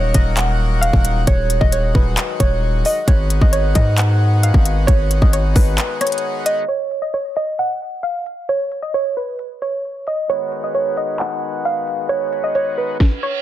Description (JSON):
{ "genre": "hip hop, trap", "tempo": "133 BPM", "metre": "4/4", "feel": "half-time", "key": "unclear", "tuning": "A4 = 440 Hz", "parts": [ { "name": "soft round pluck", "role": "melody", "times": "0.0-13.4 s", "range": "Cb5 to Gb5", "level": "-20 LUFS", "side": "right 2 dB", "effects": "chorus, low-pass filter, ping-pong delay" }, { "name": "accordion", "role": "sustained chords", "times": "0.0-6.7, 10.3-13.0 s", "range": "Eb3 to Gb4", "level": "-26 LUFS", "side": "left 4 dB", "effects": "none" }, { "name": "distorted 808-style bass", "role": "bass", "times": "0.0-5.8 s", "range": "Eb1 to Ab2", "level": "-17 LUFS", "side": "equal", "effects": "distortion" }, { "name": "trap drum kit", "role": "drums", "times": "0.1-13.1 s", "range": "handclaps, hi-hat, kick drum, rim click, snare drum", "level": "-16 LUFS", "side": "equal", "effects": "none" }, { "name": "reverse cymbal", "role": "sound effects", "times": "13.1-13.4 s", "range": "none", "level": "-27 LUFS", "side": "right 8 dB", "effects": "none" } ], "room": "digital ambience", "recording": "dense, heavily limited modern master, low-pass filter", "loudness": "-15 LUFS", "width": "side -13 dB against mid", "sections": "0.0-6.7 A section; 6.7-13.4 B section", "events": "break 5.8-6.7; filter sweep 6.7-13.4; reverse cymbal 13.1", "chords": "0.0 Ebm; 3.1 Abm7; 6.7 N.C.; 10.3 Abm7" }